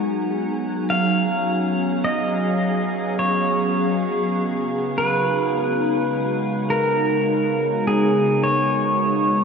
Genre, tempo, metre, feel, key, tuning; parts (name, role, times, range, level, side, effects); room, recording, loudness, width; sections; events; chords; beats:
ambient; 52 BPM; 4/4; straight; A4 = 436 Hz
warbly tape-like pad; sustained chords; 0.0-9.4 s; C#3 to A#5; -22 LUFS; equal; chorus, built-in reverb, phaser
organ-like drone; drone; 0.0-9.4 s; B3 to F#4; -29 LUFS; right 2 dB; ensemble chorus, built-in reverb, phaser
wind-like tuned noise texture; texture; 0.0-9.4 s; G#4 to G#5; -37 LUFS; equal; built-in reverb
pedal steel guitar; melody; 0.9-9.4 s; G#4 to E#5; -22 LUFS; equal; diffuse ambient delay
wet cathedral reverb, RT60 7.3 s; in a vast, echoing space, cassette tape; -18 LUFS; side -6 dB against mid
0.0-9.4 A section
fade-out on synth texture 0.0-9.4
0.0 F#maj9; 4.4 C#7
0.89 2.05 3.21 | 4.36 5.52 6.68 7.84 | 9.02